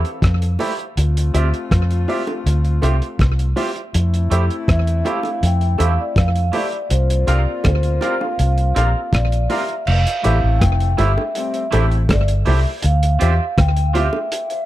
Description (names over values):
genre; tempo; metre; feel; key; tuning
lovers rock reggae; 81 BPM; 4/4; straight; F major; A4 = 440 Hz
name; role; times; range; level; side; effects
warm horn section; second line; 0.0-12.0 s; E3 to A4; -29 LUFS; left 6 dB; none
vintage muted fingered electric bass; bass; 0.0-14.1 s; F1 to F2; -16 LUFS; equal; none
cloth-damped thuddy drum kit; drums; 0.0-14.7 s; crash cymbal, hi-hat, kick drum, rim click; -22 LUFS; equal; slapback echo
bright baby grand piano; accompaniment; 0.6-14.6 s; F4 to F5; -26 LUFS; equal; slapback echo
twangy electric guitar; stabs; 0.6-14.1 s; A3 to Bb4; -26 LUFS; right 5 dB; slapback echo
bongos; percussion; 0.6-14.3 s; none; -28 LUFS; right 3 dB; none
vibraphone with soft mallets; melody; 4.7-14.6 s; C5 to G5; -24 LUFS; equal; tape echo
room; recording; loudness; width
small room ambience; dry, close 1970s-style studio recording; -15 LUFS; side -15 dB against mid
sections
0.0-9.9 A section; 9.9-14.7 B section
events
none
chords
0.0 Fmaj9; 1.0 Dm11; 3.9 Fmaj9; 6.9 C7sus4; 9.9 Fmaj9; 12.8 Dm11